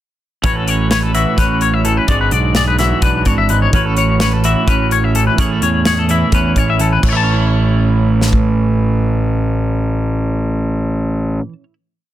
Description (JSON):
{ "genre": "math rock and midwest emo", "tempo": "255 BPM (eighths)", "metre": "7/8", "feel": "straight", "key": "A major", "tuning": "A4 = 440 Hz", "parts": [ { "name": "twelve-string electric guitar", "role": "accompaniment", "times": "0.4-11.7 s", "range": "G#2 to B4", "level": "-18 LUFS", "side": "right 6 dB", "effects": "none" }, { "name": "twangy electric guitar", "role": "arpeggios", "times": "0.4-11.5 s", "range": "A4 to A5", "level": "-18 LUFS", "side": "left 8 dB", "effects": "harmonic tremolo" }, { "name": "fuzz fingered electric bass", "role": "bass", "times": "0.4-11.4 s", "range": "G#1 to E2", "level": "-16 LUFS", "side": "equal", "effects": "overdrive" }, { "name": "modern studio drum kit", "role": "drums", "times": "0.4-8.4 s", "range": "crash cymbal, hi-hat, kick drum, snare drum", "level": "-18 LUFS", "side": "equal", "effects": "none" } ], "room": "little or no reverb", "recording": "dense, heavily limited modern master", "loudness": "-12 LUFS", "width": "side -12 dB against mid", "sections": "0.4-7.0 A section; 7.0-10.3 final chord", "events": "none", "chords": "0.4 A69; 2.1 E9/G#; 3.7 A69; 5.4 Amaj9; 7.0 A", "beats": "| 0.44 0.68 0.91 1.15 1.38 1.62 1.85 | 2.09 2.32 2.56 2.79 3.03 3.27 3.50 | 3.74 3.97 4.21 4.44 4.68 4.92 5.15 | 5.39 5.62 5.86 6.09 6.33 6.57 6.80 | 7.04 7.27 7.51 7.75 7.98 8.22 8.45 | 8.69 8.92 9.16 9.39 9.63 9.86 10.10" }